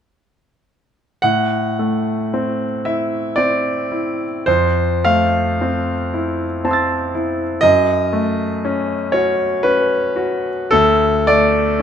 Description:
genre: classical, impressionist solo piano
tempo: 57 BPM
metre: 3/4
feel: uneven beats, rubato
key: A dorian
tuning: A4 = 440 Hz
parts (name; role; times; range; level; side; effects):
- clear concert grand piano; solo; 1.2-11.8 s; D2 to A6; -15 LUFS; equal; none
room: moderate recital hall reverb, RT60 1.6 s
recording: close, detailed microphones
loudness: -15 LUFS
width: side -8 dB against mid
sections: 1.2-11.8 A section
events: none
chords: 1.2 Am; 4.5 Fmaj7; 7.6 F#m; 10.7 D5

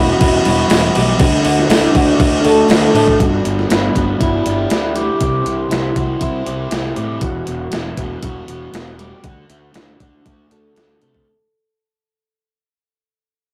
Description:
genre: rock, shoegaze and dream pop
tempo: 119 BPM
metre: 4/4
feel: straight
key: unclear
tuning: A4 = 441 Hz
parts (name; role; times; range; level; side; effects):
- dark analog pad; sustained chords; 0.0-7.2 s; G3 to D6; -26 LUFS; equal; chorus
- fingerpicked twelve-string acoustic guitar; arpeggios; 0.0-11.3 s; E4 to A4; -22 LUFS; equal; none
- mellow electric guitar; riff; 0.0-11.3 s; C3 to D5; -23 LUFS; equal; none
- overdriven semi-hollow guitar; riff; 0.0-11.3 s; E2 to F#4; -25 LUFS; equal; none
- fuzz fingered electric bass; bass; 0.0-11.2 s; E1 to C3; -24 LUFS; equal; overdrive
- crisp 8-bit digital drum machine; drums; 0.2-11.3 s; crash cymbal, hi-hat, kick drum, snare drum; -19 LUFS; equal; overdrive
- tambourine; percussion; 0.5-3.1 s; none; -37 LUFS; equal; none
room: wet studio ambience, RT60 0.5 s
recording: rough rehearsal-room recording, warm saturation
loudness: -15 LUFS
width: mono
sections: 0.0-3.2 A section; 3.2-11.3 B section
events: fade-out 3.2-11.3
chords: 0.0 Emadd9; 1.2 D; 3.2 G6; 5.2 C; 7.2 Emadd9; 9.2 D

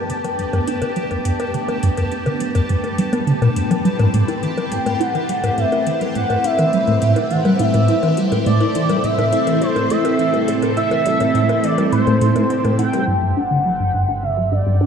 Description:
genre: ambient, sequencer-driven space music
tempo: 104 BPM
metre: 4/4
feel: straight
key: unclear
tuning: A4 = 439 Hz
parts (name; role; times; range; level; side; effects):
- string machine, full ensemble; sustained chords; 0.0-14.9 s; A3 to C5; -22 LUFS; right 1 dB; phaser, ensemble chorus
- bubbling stepped-filter texture; texture; 0.0-13.1 s; G4 to A5; -31 LUFS; left 1 dB; chorus, built-in reverb
- resonant blip pluck; riff; 0.1-14.9 s; G2 to E4; -19 LUFS; equal; phaser, analog chorus, tape echo
- electronic hi-hat and bongos; percussion; 0.1-13.0 s; none; -28 LUFS; left 3 dB; overdrive, tape echo
- expressive synth lead; melody; 4.7-14.9 s; C5 to G5; -20 LUFS; equal; analog chorus, tape echo
- fat analog bass; bass; 13.1-14.9 s; G1; -22 LUFS; equal; none
room: wet plate reverb, RT60 2.6 s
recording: dark, warm production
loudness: -15 LUFS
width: side -7 dB against mid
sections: 0.0-13.1 A section; 13.1-14.9 B section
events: fade-in on string machine 0.0-13.1; filter sweep on synth arpeggio sound 0.0-13.1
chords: 0.0 Gadd9; 3.8 Amadd9; 13.1 Gadd9

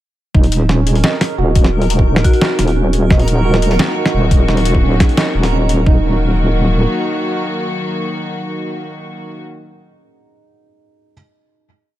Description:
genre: half-time drum and bass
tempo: 174 BPM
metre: 4/4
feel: half-time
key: Eb minor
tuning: A4 = 439 Hz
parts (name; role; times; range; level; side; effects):
- felt-muted upright piano; arpeggios; 0.3-6.0 s; Db4 to Eb5; -22 LUFS; right 5 dB; analog delay
- deep soft wobble bass; bass; 0.3-6.9 s; Eb1; -14 LUFS; equal; chorus
- electronic kick drum; drums; 0.3-5.9 s; none; -12 LUFS; equal; none
- backwards swelling texture; texture; 1.0-5.9 s; Bb4; -25 LUFS; right 3 dB; built-in reverb
- boom bap sampler-style drum kit; drums; 0.4-5.8 s; hi-hat, snare drum; -17 LUFS; equal; none
- marimba with medium mallets; melody; 2.2-2.7 s; Gb4; -24 LUFS; left 2 dB; analog delay
- warm studio string section; sustained chords; 3.1-9.4 s; Eb3 to Gb4; -21 LUFS; left 1 dB; sidechain pumping
room: small room ambience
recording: echo-heavy mix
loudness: -12 LUFS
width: side -14 dB against mid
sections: 0.3-5.9 drop; 5.9-8.6 final chord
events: drop 0.3-5.9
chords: 0.3 Ebm

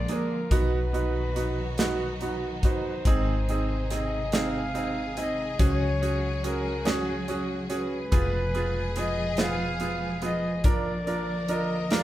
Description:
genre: six-eight pop ballad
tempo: 47 BPM (dotted quarters)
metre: 6/8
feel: straight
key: unclear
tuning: A4 = 440 Hz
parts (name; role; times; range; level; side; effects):
- breathy flugelhorn; melody; 0.0-12.0 s; Ab4 to F5; -33 LUFS; left 1 dB; none
- warm symphonic string section; sustained chords; 0.0-12.0 s; B2 to Bb4; -33 LUFS; equal; none
- woody fretless electric bass; bass; 0.0-12.0 s; F1 to Db2; -31 LUFS; equal; none
- clear concert grand piano; accompaniment; 0.1-12.0 s; Bb3 to Bb4; -30 LUFS; right 3 dB; none
- modern studio drum kit; drums; 0.1-12.0 s; hi-hat, kick drum, snare drum; -26 LUFS; equal; none
room: moderate large studio reverb, RT60 1.2 s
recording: band playing live in one room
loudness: -24 LUFS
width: side -14 dB against mid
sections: 0.0-12.0 A section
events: none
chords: 0.0 Bb7; 0.5 B; 3.1 Ab; 5.6 Dbsus4; 8.1 Fdim; 10.6 Bb

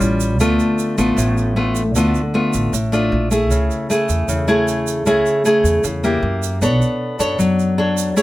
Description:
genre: bossa nova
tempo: 154 BPM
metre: 4/4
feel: straight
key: A major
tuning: A4 = 442 Hz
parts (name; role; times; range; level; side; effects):
- nylon-string guitar; accompaniment; 0.0-8.2 s; A2 to C#5; -16 LUFS; left 1 dB; none
- upright bass; bass; 0.0-8.2 s; A1 to F#2; -21 LUFS; right 1 dB; none
- tube shaker; percussion; 0.0-8.2 s; none; -29 LUFS; right 10 dB; none
room: light reverb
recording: none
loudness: -15 LUFS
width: side -16 dB against mid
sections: 0.0-8.2 A section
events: none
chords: 0.0 A7b13; 0.4 Dm6; 3.1 Bbmaj7; 3.5 Amaj7/C#; 6.2 F#7b9; 6.6 Bm9

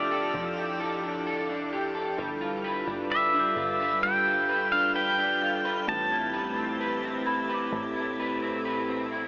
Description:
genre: dream pop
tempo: 65 BPM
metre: 4/4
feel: straight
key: A minor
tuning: A4 = 440 Hz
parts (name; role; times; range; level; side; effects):
- pedal steel guitar; melody; 0.0-8.6 s; D5 to A5; -28 LUFS; equal; tape echo
- glass harmonica; sustained chords; 0.0-9.3 s; G3 to B4; -33 LUFS; equal; none
- electric guitar at the edge of break-up; arpeggios; 0.0-9.3 s; A2 to B4; -31 LUFS; equal; analog chorus, tape echo
- plucky analog bass; bass; 0.0-9.3 s; F1 to A1; -45 LUFS; equal; none
- celesta; texture; 3.1-9.3 s; B5 to G6; -37 LUFS; equal; tape echo
room: wet shimmer reverb, RT60 6.1 s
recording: small speaker sound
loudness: -25 LUFS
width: side -26 dB against mid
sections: 0.0-9.3 A section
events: none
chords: 0.0 F69; 2.2 G7; 5.9 Am9

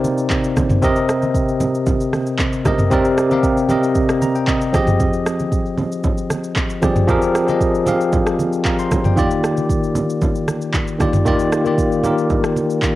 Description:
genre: amapiano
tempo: 115 BPM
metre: 4/4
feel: straight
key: C minor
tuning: A4 = 440 Hz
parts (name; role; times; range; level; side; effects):
- bell-like tine electric piano; accompaniment; 0.0-13.0 s; C3 to C6; -17 LUFS; equal; medium stereo tremolo, cassette tape
- afro-pop drum kit; drums; 0.0-13.0 s; handclaps, kick drum, rim click, shaker, toms; -20 LUFS; equal; cassette tape
- congas; percussion; 0.0-12.7 s; none; -24 LUFS; right 2 dB; none
room: light reverb, digital ambience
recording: home recording on cassette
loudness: -15 LUFS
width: side -16 dB against mid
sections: 0.0-13.0 A section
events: tine electric piano fill 4.0-5.0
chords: 0.0 Cm7; 0.8 Cm11; 4.7 Fm9; 9.2 Ebmaj9

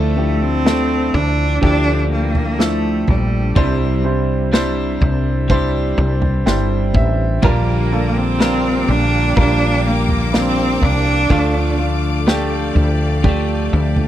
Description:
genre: pop ballad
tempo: 62 BPM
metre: 4/4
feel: straight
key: D minor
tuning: A4 = 440 Hz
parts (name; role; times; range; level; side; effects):
- rich cello; melody; 0.0-11.8 s; G3 to D4; -20 LUFS; right 1 dB; none
- warm baby grand piano; accompaniment; 0.0-14.1 s; Bb2 to G5; -21 LUFS; right 2 dB; none
- twelve-string electric guitar; arpeggios; 0.0-14.1 s; Bb2 to A4; -26 LUFS; left 4 dB; none
- woody fretless electric bass; bass; 0.0-14.1 s; G1 to D2; -18 LUFS; equal; none
- unplugged drum kit; drums; 0.7-14.1 s; kick drum, snare drum, toms; -18 LUFS; equal; none
- clear studio string section; sustained chords; 7.4-14.1 s; Bb3 to D6; -26 LUFS; left 4 dB; none
room: studio ambience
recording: dry, close 1970s-style studio recording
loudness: -14 LUFS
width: side -12 dB against mid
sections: 0.0-14.1 A section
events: grand piano fill 6.0-7.4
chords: 0.0 Dmadd9; 3.6 Cadd9; 7.4 Gm7/Bb; 11.3 Dm

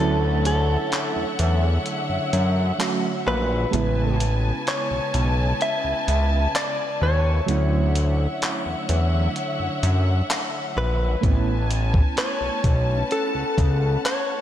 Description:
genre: contemporary R&B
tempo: 64 BPM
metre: 4/4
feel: straight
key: A major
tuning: A4 = 440 Hz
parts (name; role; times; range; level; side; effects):
- direct-recorded clean electric guitar; melody; 0.0-14.4 s; A4 to E5; -27 LUFS; left 1 dB; tape echo
- FM electric piano with tremolo; accompaniment; 0.0-14.4 s; C#3 to F#4; -30 LUFS; right 6 dB; none
- warm studio string section; sustained chords; 0.0-14.4 s; C#3 to A5; -28 LUFS; left 2 dB; sidechain pumping
- fat analog bass; bass; 0.0-14.0 s; A1 to F#2; -21 LUFS; equal; none
- dusty soul sampler-style drum kit; drums; 0.5-14.3 s; handclaps, hi-hat, kick drum; -25 LUFS; equal; none
room: moderate plate reverb, RT60 2.6 s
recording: dreamy mix soaked in reverb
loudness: -20 LUFS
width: side -11 dB against mid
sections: 0.0-14.4 A section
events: break 0.0-11.2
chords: 0.0 Dmaj9; 3.7 Amaj9; 7.5 Dmaj9; 11.2 Amaj9

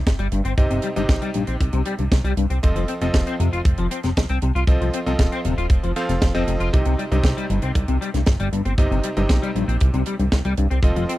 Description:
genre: italo disco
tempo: 117 BPM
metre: 4/4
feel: straight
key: C dorian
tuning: A4 = 440 Hz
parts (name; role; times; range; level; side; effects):
- bright electric grand piano; stabs; 0.0-11.2 s; C3 to F5; -27 LUFS; right 1 dB; tape echo
- chorused synth bass; bass; 0.0-11.1 s; Eb1 to F2; -22 LUFS; equal; tube saturation
- kick drum; drums; 0.1-10.9 s; none; -19 LUFS; equal; none
- tight funk drum kit; drums; 0.1-11.2 s; hi-hat, snare drum; -27 LUFS; right 2 dB; none
- semi-hollow electric guitar; arpeggios; 0.2-11.1 s; G2 to F4; -26 LUFS; left 4 dB; ensemble chorus, tape echo
room: little or no reverb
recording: dry, close 1970s-style studio recording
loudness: -18 LUFS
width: side -16 dB against mid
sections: 0.0-11.2 A section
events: none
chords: 0.0 Cm; 2.6 F7; 6.7 Cm

